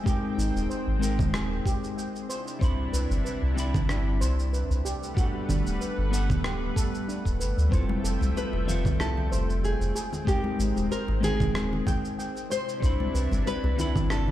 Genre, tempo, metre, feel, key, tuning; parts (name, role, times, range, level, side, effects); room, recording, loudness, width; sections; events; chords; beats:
sunset chillout; 94 BPM; 4/4; swing 54% on 16ths; A4 = 440 Hz
clean electric guitar; accompaniment; 0.0-14.3 s; F3 to B5; -33 LUFS; left 2 dB; auto-pan, ping-pong delay
lush unison pad; sustained chords; 0.0-14.3 s; C3 to G5; -35 LUFS; equal; chorus
steel pan; arpeggios; 0.0-14.3 s; A3 to G5; -37 LUFS; right 2 dB; ping-pong delay
electronic kick drum; drums; 0.1-14.1 s; -26 LUFS; equal
electronic shaker, congas and rim click; drums; 0.1-14.2 s; -34 LUFS; right 2 dB
round analog bass; bass; 0.4-14.3 s; D1 to D2; -27 LUFS; equal
congas and bongos; percussion; 7.9-14.3 s; -36 LUFS; left 2 dB
nylon-string guitar; melody; 8.4-14.3 s; G4 to C5; -32 LUFS; left 2 dB; ping-pong delay
light reverb, digital ambience; played on a big sound system in a bare room, large studio reverb; -24 LUFS; side -13 dB against mid
0.0-14.3 A section
0.0 Abmaj9; 2.3 Cmaj9; 4.8 Gmaj9; 7.7 Fmaj9; 10.0 Abmaj9; 12.5 Cmaj9
| 0.06 0.70 1.34 1.98 | 2.62 3.25 3.89 4.53 | 5.17 5.81 6.45 7.08 | 7.72 8.36 9.00 9.64 | 10.27 10.91 11.55 12.19 | 12.83 13.47 14.10